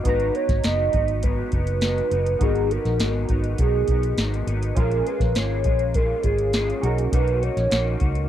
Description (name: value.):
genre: indie pop, bedroom pop.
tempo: 102 BPM.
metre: 4/4.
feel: straight.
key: G# dorian.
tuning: A4 = 436 Hz.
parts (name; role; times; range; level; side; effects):
electric guitar through a small old amp; accompaniment; 0.0-8.3 s; G#2 to F#4; -31 LUFS; left 4 dB; analog chorus, vibrato effect.
warm analog keys; accompaniment; 0.0-8.3 s; B3 to A#5; -32 LUFS; right 6 dB; chorus, cassette tape.
hollow clarinet-like synth lead; melody; 0.1-8.0 s; G#4 to D#5; -25 LUFS; right 1 dB; lush chorus.
vintage muted fingered electric bass; bass; 0.1-8.3 s; F#1 to C#2; -24 LUFS; equal; none.
soft vintage rhythm box; drums; 0.1-8.3 s; hi-hat, kick drum, snare drum; -24 LUFS; equal; none.
room: little or no reverb.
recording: dry, close 1970s-style studio recording.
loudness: -20 LUFS.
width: side -11 dB against mid.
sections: 0.0-8.3 A section.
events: none.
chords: 0.1 G#m7; 4.8 A#m7; 6.8 Bmaj7.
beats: | 0.06 0.65 1.23 1.82 | 2.41 3.00 3.59 4.18 | 4.77 5.36 5.95 6.54 | 7.12 7.71.